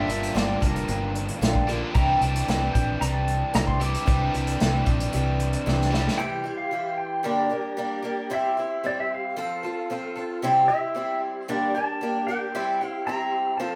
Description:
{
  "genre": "folk rock and heartland rock",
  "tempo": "113 BPM",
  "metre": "4/4",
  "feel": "straight",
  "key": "unclear",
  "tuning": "A4 = 440 Hz",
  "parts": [
    { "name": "pedal steel guitar", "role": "melody", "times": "0.0-13.8 s", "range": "Bb4 to D6", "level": "-33 LUFS", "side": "equal", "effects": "none" },
    { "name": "picked twelve-string acoustic guitar", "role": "accompaniment", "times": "0.0-13.8 s", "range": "G2 to A4", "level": "-29 LUFS", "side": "equal", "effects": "none" },
    { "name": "cranked stack guitar", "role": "riff", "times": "0.0-6.2 s", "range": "G2 to G4", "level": "-32 LUFS", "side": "equal", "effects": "overdrive" },
    { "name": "fingered electric bass", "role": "bass", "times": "0.0-6.1 s", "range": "F1 to C2", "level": "-29 LUFS", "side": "equal", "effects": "none" },
    { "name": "unplugged drum kit", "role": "drums", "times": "0.1-6.2 s", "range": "hi-hat, kick drum, snare drum", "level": "-29 LUFS", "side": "equal", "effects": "none" },
    { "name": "mellow tonewheel organ", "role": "sustained chords", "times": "6.2-13.8 s", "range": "G4 to C6", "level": "-38 LUFS", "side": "equal", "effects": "chorus vibrato, fast rotary speaker" }
  ],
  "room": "moderate small room reverb, RT60 0.5 s",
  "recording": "band playing live in one room",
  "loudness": "-25 LUFS",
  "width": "mono",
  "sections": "0.0-6.2 A section; 6.2-13.8 B section",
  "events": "drum fill 5.7-6.2",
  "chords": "0.0 Gm7; 2.0 Cadd9; 6.2 C; 7.3 Gm; 8.3 C/G; 9.4 F; 10.4 C; 11.5 Gm; 12.5 C/G",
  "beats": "0.35 0.89 1.42 | 1.95 2.48 3.02 3.55 | 4.08 4.61 5.14 5.67 | 6.20 6.73 7.26 7.79 | 8.31 8.84 9.37 9.90 | 10.43 10.96 11.48 12.01 | 12.54 13.07 13.60"
}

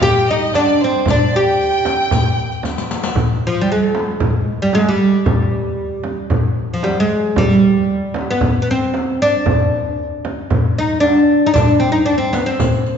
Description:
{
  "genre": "Arabic maqam ensemble",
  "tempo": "114 BPM",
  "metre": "4/4",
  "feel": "straight",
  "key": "G maqam hijaz",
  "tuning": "A4 = 440 Hz",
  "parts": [
    { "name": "oud", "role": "melody", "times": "0.0-13.0 s", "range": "F3 to G4", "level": "-15 LUFS", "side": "equal", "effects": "none" },
    { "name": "rich studio violin section", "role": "second line", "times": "0.0-2.9 s", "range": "C5 to G5", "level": "-23 LUFS", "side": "right 2 dB", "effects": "none" },
    { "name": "rich violin", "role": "second line", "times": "0.0-2.9 s", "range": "C5 to G5", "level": "-25 LUFS", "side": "left 2 dB", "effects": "none" },
    { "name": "darbuka", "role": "percussion", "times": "0.0-12.9 s", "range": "none", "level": "-21 LUFS", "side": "left 2 dB", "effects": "none" },
    { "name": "frame drum", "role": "percussion", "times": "0.0-12.7 s", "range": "none", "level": "-22 LUFS", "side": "right 2 dB", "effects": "none" },
    { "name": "riq", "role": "percussion", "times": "0.0-3.2, 11.6-12.9 s", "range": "none", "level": "-29 LUFS", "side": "left 4 dB", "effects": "none" }
  ],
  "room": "wet recital hall reverb, RT60 1.8 s",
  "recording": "recorded in a church or concert hall, nothing above 7.7 kHz",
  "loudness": "-14 LUFS",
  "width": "side -7 dB against mid",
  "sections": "0.0-3.2 A section; 3.2-13.0 B section",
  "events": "drum fill 2.6-3.2",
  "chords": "none",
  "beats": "0.02 0.55 | 1.07 1.60 2.12 2.65 | 3.17 3.69 4.22 4.74 | 5.27 5.79 6.32 6.84 | 7.37 7.89 8.41 8.94 | 9.46 9.99 10.51 11.03 | 11.56 12.08 12.60"
}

